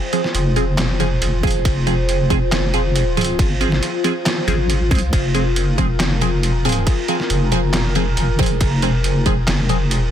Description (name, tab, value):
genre	deep dubstep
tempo	138 BPM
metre	4/4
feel	half-time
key	F minor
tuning	A4 = 442 Hz
part	dark analog pad	sustained chords	0.0-10.1 s	F4 to C5	-24 LUFS	left 2 dB	chorus, phaser
part	filtered dub chord stab	stabs	0.0-9.8 s	F3 to Ab4	-22 LUFS	right 2 dB	phaser, dub echo
part	trip hop sampler-style drum kit	drums	0.1-10.0 s	handclaps, hi-hat, ride cymbal, snare drum	-23 LUFS	right 1 dB	overdrive
part	deep soft wobble bass	bass	0.3-10.1 s	F1 to C2	-19 LUFS	equal	chorus
part	electronic kick drum	drums	1.4-9.4 s	none	-18 LUFS	equal	none
room	little or no reverb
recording	dense, heavily limited modern master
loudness	-15 LUFS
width	side -10 dB against mid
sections	0.0-10.1 A section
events	none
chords	0.0 Fm